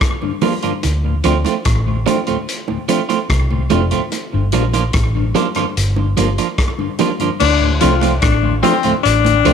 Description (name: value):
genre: roots reggae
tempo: 73 BPM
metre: 4/4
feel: straight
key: D minor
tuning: A4 = 440 Hz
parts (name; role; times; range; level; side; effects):
- vintage drum kit; drums; 0.0-9.5 s; crash cymbal, hi-hat, kick drum, rim click; -21 LUFS; left 1 dB; slapback echo
- mellow tonewheel organ; accompaniment; 0.2-9.5 s; D2 to F4; -23 LUFS; left 10 dB; chorus vibrato, slow rotary speaker, slapback echo
- bongos; percussion; 0.2-9.4 s; none; -26 LUFS; right 9 dB; none
- clean electric guitar; accompaniment; 0.4-9.5 s; F3 to F4; -19 LUFS; right 10 dB; dub echo
- vintage muted fingered electric bass; bass; 0.8-9.5 s; F1 to D2; -16 LUFS; equal; none
- breathy tenor saxophone; second line; 7.4-9.5 s; C4 to F4; -15 LUFS; left 12 dB; dub echo
room: light reverb, small room ambience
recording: 1960s-style stereo with parts hard left and right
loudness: -14 LUFS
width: side -7 dB against mid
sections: 0.0-7.4 A section; 7.4-9.5 B section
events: none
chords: 0.0 Gm7; 0.8 Dm7; 4.1 Gm7; 7.4 Dm7